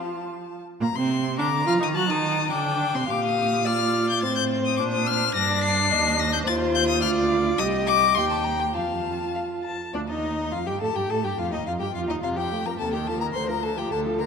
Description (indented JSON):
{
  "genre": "quick classical-period movement for string quartet",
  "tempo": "106 BPM",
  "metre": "2/4",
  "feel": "rubato",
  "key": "unclear",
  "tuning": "A4 = 440 Hz",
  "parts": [
    { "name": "rich violin", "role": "melody", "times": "0.0-14.3 s", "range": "D5 to C7", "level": "-26 LUFS", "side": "left 8 dB", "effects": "none" },
    { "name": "dark violin", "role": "second line", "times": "0.0-14.3 s", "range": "D4 to Bb5", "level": "-28 LUFS", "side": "left 4 dB", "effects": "none" },
    { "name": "warm viola", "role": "accompaniment", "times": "0.0-14.3 s", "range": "C3 to A4", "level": "-28 LUFS", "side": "right 2 dB", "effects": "none" },
    { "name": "dark cello", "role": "bass", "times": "0.0-14.3 s", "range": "C2 to F4", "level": "-29 LUFS", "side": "right 4 dB", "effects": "none" }
  ],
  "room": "wet concert hall reverb, RT60 1.8 s",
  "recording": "none",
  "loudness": "-21 LUFS",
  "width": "side -6 dB against mid",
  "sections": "0.8-9.9 A section; 9.9-14.3 B section",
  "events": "none",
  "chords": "0.0 F; 0.8 Bbadd9; 2.0 D#dim; 2.5 G5/D; 3.1 Bb; 4.2 Adim; 4.8 Bb; 5.4 Gm; 5.9 Cm/Eb; 6.5 F7(no3)/Eb; 7.0 Dm; 7.6 Cm; 8.2 Eb6; 8.7 F; 9.9 N.C.; 10.5 Fadd9; 11.1 Ebadd9; 12.2 F; 12.8 F5/Eb; 13.3 Bbmaj13/D"
}